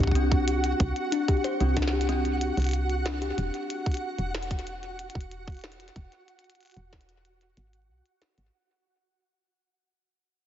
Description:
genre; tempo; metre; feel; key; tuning
IDM; 93 BPM; 4/4; straight; C lydian; A4 = 441 Hz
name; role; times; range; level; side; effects
kalimba; arpeggios; 0.0-3.3 s; C4 to C5; -30 LUFS; left 3 dB; vintage 12-bit sampler grit, digital delay
woody FM bass; bass; 0.0-8.5 s; E1 to C2; -28 LUFS; equal; tube saturation
electronic kick drum; drums; 0.0-7.1 s; none; -27 LUFS; equal; none
flickering grainy texture; texture; 0.0-8.6 s; F#4 to F#5; -33 LUFS; right 2 dB; built-in reverb
glitchy drum kit; drums; 0.2-8.5 s; hi-hat, snare drum; -38 LUFS; equal; ping-pong delay
room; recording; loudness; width
light reverb, digital ambience; heavily compressed radio sound, nothing above 7.8 kHz; -25 LUFS; side -10 dB against mid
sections
0.0-8.5 A section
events
fade-out 0.0-8.5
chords
0.0 C5; 3.4 N.C.

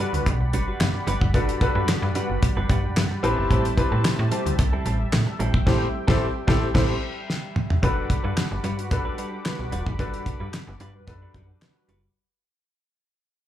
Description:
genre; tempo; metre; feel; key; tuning
early-eighties boogie funk; 111 BPM; 4/4; straight; unclear; A4 = 439 Hz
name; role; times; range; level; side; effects
mellow synth brass; second line; 0.0-12.0 s; G3 to C5; -31 LUFS; equal; chorus, slapback echo
warm grand piano; accompaniment; 0.0-11.9 s; C4 to B4; -28 LUFS; left 4 dB; slapback echo
brassy analog pad; sustained chords; 0.0-12.1 s; G3 to D6; -34 LUFS; right 2 dB; chorus
clean electric guitar; riff; 0.0-12.1 s; G3 to B4; -32 LUFS; right 5 dB; wide subtle chorus, slapback echo
slap-like FM bass; bass; 0.1-12.1 s; E1 to A2; -25 LUFS; equal; none
damped 70s drum kit; drums; 0.1-12.0 s; crash cymbal, handclaps, hi-hat, kick drum, snare drum, toms; -24 LUFS; equal; none
room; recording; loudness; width
little or no reverb; live gig heard through the venue's PA, club reverb; -21 LUFS; side -12 dB against mid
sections
0.0-7.8 A section; 7.8-12.2 B section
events
band accent 5.7-7.8; drum fill 7.3-7.8; fade-out 7.8-12.2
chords
0.0 Gmaj7; 3.2 Am7; 7.8 Gmaj7

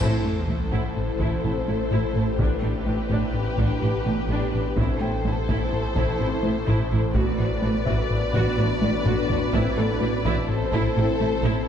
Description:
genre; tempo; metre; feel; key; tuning
cinematic, hybrid orchestral and electronic film score; 126 BPM; 5/4; straight; A dorian; A4 = 440 Hz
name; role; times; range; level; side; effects
rich symphonic violin section; melody; 0.0-11.7 s; B4 to D5; -31 LUFS; left 3 dB; none
warm symphonic violin section; second line; 0.0-11.7 s; G4 to B4; -32 LUFS; left 3 dB; none
rich symphonic viola section; accompaniment; 0.0-11.7 s; D4 to F#4; -33 LUFS; right 1 dB; none
ethereal airy pad; sustained chords; 0.6-11.7 s; A3 to C5; -30 LUFS; left 1 dB; ensemble chorus, built-in reverb, phaser
mellow French horn section; sustained chords; 0.0-11.1 s; B3 to G4; -35 LUFS; left 1 dB; none
rubbery square bass; riff; 0.0-11.6 s; A2 to A3; -28 LUFS; left 3 dB; none
dark symphonic cello section; bass; 0.0-11.5 s; A2; -31 LUFS; right 3 dB; none
phased detuned saw bass; bass; 0.0-11.7 s; A1; -30 LUFS; equal; phaser
warm symphonic double bass section; bass; 0.0-11.5 s; A1; -30 LUFS; right 3 dB; none
taiko ensemble; drums; 0.0-11.2 s; none; -30 LUFS; equal; none
sub drop; sound effects; 0.0-2.4 s; none; -31 LUFS; equal; none
felt-muted upright piano; texture; 0.7-11.7 s; A4 to G5; -39 LUFS; left 1 dB; none
room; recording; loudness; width
moderate scoring stage reverb, RT60 2.0 s; dark, warm production, nothing above 11.0 kHz, faint mains hum; -21 LUFS; side -8 dB against mid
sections
0.0-11.7 A section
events
band accent 0.0-0.5; impact 0.0-2.4; drum fill 8.8-9.5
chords
0.0 Am; 2.4 G/A; 4.8 Am; 7.2 Bm/A; 9.5 Am

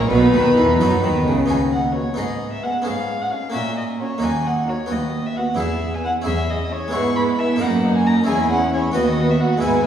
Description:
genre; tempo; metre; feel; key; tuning
classical, baroque-style concerto movement with solo episodes; 88 BPM (dotted quarters); 6/8; straight; B major; A4 = 437 Hz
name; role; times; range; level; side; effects
rich violin; melody; 0.0-9.8 s; B4 to C#6; -23 LUFS; left 1 dB; none
warm chamber violin section; melody; 0.0-9.9 s; G#4 to B5; -35 LUFS; left 2 dB; none
warm chamber violin section; second line; 0.0-9.8 s; D#4 to G#4; -29 LUFS; left 2 dB; none
dark chamber viola section; accompaniment; 0.0-9.9 s; A#3 to D#4; -23 LUFS; right 2 dB; none
harpsichord; accompaniment; 0.0-9.9 s; D#2 to B4; -24 LUFS; equal; none
rich chamber cello section; bass; 0.0-9.9 s; D#2 to F#3; -22 LUFS; right 1 dB; none
rich chamber double bass section; bass; 0.0-1.5 s; B1 to F#2; -24 LUFS; right 1 dB; none
room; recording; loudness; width
wet scoring stage reverb, RT60 1.9 s; heard from further back in the room, small room reverb; -17 LUFS; side -9 dB against mid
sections
0.0-1.5 A section; 1.5-9.9 B section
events
none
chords
0.1 B; 1.5 B/D#; 2.2 G#m; 2.9 C#7/G#; 3.5 F#/A#; 4.2 D#m; 4.9 B/D#; 5.6 E; 6.3 C#m/E; 6.9 E/G#; 7.6 D#m/F#; 8.3 C#m/E; 9.0 B/D#

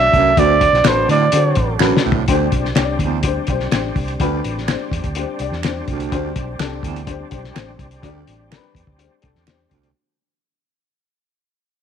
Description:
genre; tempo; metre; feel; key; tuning
uptempo 1960s-style soul; 125 BPM; 4/4; straight; D mixolydian; A4 = 441 Hz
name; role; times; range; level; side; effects
breathy trumpet; melody; 0.0-1.8 s; C5 to E5; -14 LUFS; right 3 dB; tape echo
dark upright piano; accompaniment; 0.0-9.8 s; D3 to D5; -24 LUFS; left 12 dB; none
overdriven tonewheel organ; sustained chords; 0.0-9.9 s; F#3 to D4; -29 LUFS; right 1 dB; slow rotary speaker, chorus vibrato
vintage muted fingered electric bass; bass; 0.0-9.9 s; A1 to D3; -23 LUFS; right 1 dB; none
breathy baritone saxophone; riff; 0.1-9.9 s; D2 to A2; -22 LUFS; right 13 dB; none
cloth-damped thuddy drum kit; drums; 0.1-9.9 s; hi-hat, kick drum, snare drum, toms; -21 LUFS; left 3 dB; none
finger snap; percussion; 0.8-9.6 s; none; -26 LUFS; right 14 dB; none
room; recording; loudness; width
light reverb, small room ambience; 1960s-style stereo with parts hard left and right; -15 LUFS; side -8 dB against mid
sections
0.0-2.3 A section; 2.3-10.0 B section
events
drum fill 1.8-2.3; fade-out 2.3-10.0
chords
0.4 D7; 2.3 D7sus4

